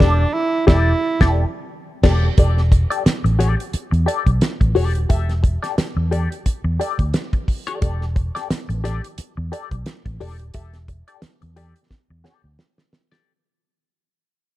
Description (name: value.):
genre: funk.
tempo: 88 BPM.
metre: 4/4.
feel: swing 56% on 16ths.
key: E minor.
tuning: A4 = 440 Hz.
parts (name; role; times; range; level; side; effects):
warm tenor saxophone; melody; 0.0-1.7 s; D4 to E4; -21 LUFS; right 3 dB; none.
semi-hollow electric guitar; accompaniment; 0.0-13.3 s; G4 to E5; -24 LUFS; left 4 dB; wah, phaser.
vintage muted fingered electric bass; bass; 0.0-12.6 s; D#1 to E2; -19 LUFS; equal; none.
damped 70s drum kit; drums; 0.0-13.3 s; crash cymbal, hi-hat, kick drum, snare drum; -18 LUFS; equal; none.
room: small room ambience.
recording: dark, warm production.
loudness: -17 LUFS.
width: side -16 dB against mid.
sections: 0.0-2.4 A section; 2.4-13.3 B section.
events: band accent 0.0-2.4; fade-out 2.4-13.3; drum fill 11.9-13.3.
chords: 0.0 Em7.